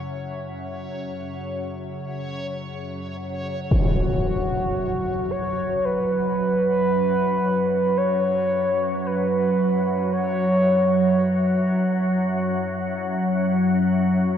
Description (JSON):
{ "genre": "dark ambient drone", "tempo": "free time", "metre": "none", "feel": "none", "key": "unclear", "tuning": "A4 = 440 Hz", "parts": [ { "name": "granular cloud pad", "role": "sustained chords", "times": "0.0-14.4 s", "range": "C#5 to F#5", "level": "-36 LUFS", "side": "left 2 dB", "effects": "built-in reverb" }, { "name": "organ-like drone", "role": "drone", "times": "0.0-14.4 s", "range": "F#2 to F#3", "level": "-23 LUFS", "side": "equal", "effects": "ensemble chorus, built-in reverb" }, { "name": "backwards swelling texture", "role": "texture", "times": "0.0-3.7 s", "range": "C#5", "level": "-36 LUFS", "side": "left 2 dB", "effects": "built-in reverb" }, { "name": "mellow horn-like synth lead", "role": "melody", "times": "3.7-11.7 s", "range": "F#4 to C#5", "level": "-23 LUFS", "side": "right 1 dB", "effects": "chorus, diffuse ambient delay" }, { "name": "impact", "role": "percussion", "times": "3.7-3.9 s", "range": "none", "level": "-25 LUFS", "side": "equal", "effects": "low-pass filter on sfx" } ], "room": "wet cathedral reverb, RT60 5.4 s", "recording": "in a vast, echoing space", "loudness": "-20 LUFS", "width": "side -9 dB against mid", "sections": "0.0-3.7 A section; 3.7-14.4 B section", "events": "fade-in on ambient pad 3.7-14.4", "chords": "0.0 F#5" }